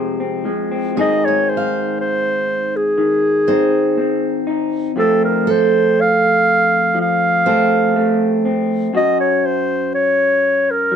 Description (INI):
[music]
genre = acoustic folk-pop ballad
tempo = 60 BPM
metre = 4/4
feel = straight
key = unclear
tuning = A4 = 440 Hz
[part]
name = mellow clarinet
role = melody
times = 0.0-11.0 s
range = Ab4 to F5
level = -16 LUFS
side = equal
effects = none
[part]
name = electric guitar through a small old amp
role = accompaniment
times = 0.0-11.0 s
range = F2 to A4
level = -18 LUFS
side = left 2 dB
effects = none
[part]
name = picked steel-string acoustic guitar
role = arpeggios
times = 1.0-9.4 s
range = Ab4 to F5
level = -22 LUFS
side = right 6 dB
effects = none
[sound]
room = moderate studio reverb, RT60 0.7 s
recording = dark, warm production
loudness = -14 LUFS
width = side -8 dB against mid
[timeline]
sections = 1.0-11.0 A section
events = none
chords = 0.0 Fm; 1.0 Ab; 5.0 F; 8.9 Gb5